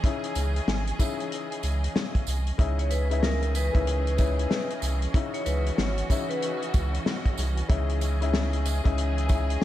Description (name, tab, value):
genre	hip hop, boom-bap hip-hop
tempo	94 BPM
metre	4/4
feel	swing 62% on 16ths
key	C# minor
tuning	A4 = 442 Hz
part	warm upright piano	accompaniment	0.0-9.6 s	C#3 to E4	-33 LUFS	left 8 dB	cassette tape, high-pass filter, low-pass filter
part	rich studio string section	sustained chords	0.0-9.6 s	E3 to D#5	-35 LUFS	right 2 dB	high-pass filter, low-pass filter
part	warm soul drum kit	drums	0.0-9.6 s	hi-hat, kick drum, snare drum	-27 LUFS	equal	none
part	warm sub bass	bass	0.4-9.6 s	G#1 to C#2	-26 LUFS	equal	none
part	tambourine	percussion	0.4-9.5 s	none	-43 LUFS	right 13 dB	none
part	vibraphone with medium hard mallets	melody	2.8-6.6 s	A#4 to C#5	-33 LUFS	equal	high-pass filter, low-pass filter, diffuse ambient delay
room	light reverb, studio reverb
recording	none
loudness	-24 LUFS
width	side -13 dB against mid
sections	0.0-9.6 A section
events	none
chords	0.0 C#madd9